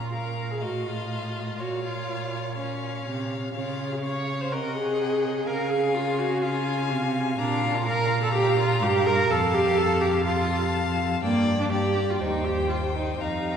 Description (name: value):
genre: quick classical-period movement for string quartet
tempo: 124 BPM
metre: 4/4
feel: rubato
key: Bb major from 7.4 s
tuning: A4 = 440 Hz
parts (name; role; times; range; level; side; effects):
- warm violin; melody; 0.0-13.6 s; F5 to Bb5; -34 LUFS; left 7 dB; none
- warm violin; second line; 0.0-13.6 s; C5 to F5; -32 LUFS; left 4 dB; none
- rich viola; accompaniment; 0.0-13.6 s; Bb3 to Db5; -26 LUFS; right 1 dB; none
- rich cello; bass; 0.0-13.6 s; Eb2 to Db3; -28 LUFS; right 2 dB; none
room: wet cathedral reverb, RT60 4.9 s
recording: recorded in a church or concert hall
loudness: -23 LUFS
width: side -8 dB against mid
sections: 0.0-13.6 A section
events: none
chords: 0.0 Bb5; 0.6 F7/A; 1.6 Bbm; 3.6 Db; 4.5 Ab7/C; 5.5 Db; 7.4 Bb5; 9.3 F; 11.2 G5; 12.2 Cm/Eb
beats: 0.12 0.61 1.10 | 1.59 2.08 2.57 3.06 | 3.55 4.04 4.52 5.00 | 5.48 5.96 6.43 6.91 | 7.39 7.87 8.35 8.82 | 9.30 9.77 10.26 10.74 | 11.23 11.72 12.21 12.70 | 13.21